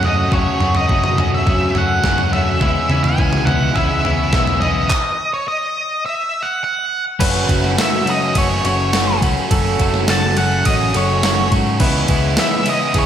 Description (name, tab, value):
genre	indie rock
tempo	104 BPM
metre	4/4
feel	straight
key	F# dorian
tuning	A4 = 441 Hz
part	octave-fuzz lead guitar	melody	0.0-13.1 s	C#5 to A5	-20 LUFS	equal	distortion, tape echo
part	crunchy overdriven guitar	riff	0.0-13.1 s	F#2 to F#4	-23 LUFS	right 6 dB	analog chorus, slapback echo
part	twelve-string electric guitar	riff	0.0-13.1 s	F#2 to F#4	-21 LUFS	left 6 dB	slapback echo
part	fingered electric bass	bass	0.0-13.1 s	F#1 to C#3	-21 LUFS	equal	none
part	clean 12-bit digital drum machine	drums	0.0-13.1 s	crash cymbal, handclaps, kick drum, ride cymbal, snare drum, toms	-19 LUFS	equal	none
part	barky tine electric piano	second line	7.2-13.1 s	G#4 to B4	-27 LUFS	right 6 dB	medium stereo tremolo, slapback echo
room	moderate lush hall reverb, RT60 1.7 s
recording	big arena sound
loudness	-14 LUFS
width	side -9 dB against mid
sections	0.0-7.2 A section; 7.2-13.1 B section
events	stop 4.9-7.2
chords	0.0 F#m; 2.6 C#m7; 4.9 N.C.; 7.2 F#m; 11.8 C#m7